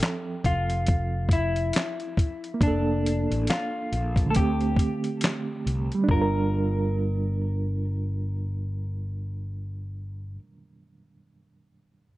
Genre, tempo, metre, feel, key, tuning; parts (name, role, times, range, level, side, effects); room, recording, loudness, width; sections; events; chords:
lo-fi hip hop; 69 BPM; 4/4; swing 58% on 16ths; G dorian; A4 = 441 Hz
reed electric piano; accompaniment; 0.0-12.1 s; D3 to E5; -29 LUFS; right 3 dB; fast tremolo, cassette tape, low-pass filter
dusty soul sampler-style drum kit; drums; 0.0-6.3 s; handclaps, hi-hat, kick drum, snare drum; -24 LUFS; equal
electric guitar through a small old amp; melody; 0.5-10.4 s; D4 to Bb4; -31 LUFS; left 3 dB; low-pass filter, tape echo
fretless electric bass; bass; 0.5-10.4 s; F1 to D2; -28 LUFS; equal
light reverb, digital ambience; dark, warm production; -24 LUFS; side -17 dB against mid
0.0-6.1 A section; 6.1-9.6 B section
0.0 Fmaj7; 2.6 Bbmaj7/F; 4.3 D7sus4; 6.1 Gm7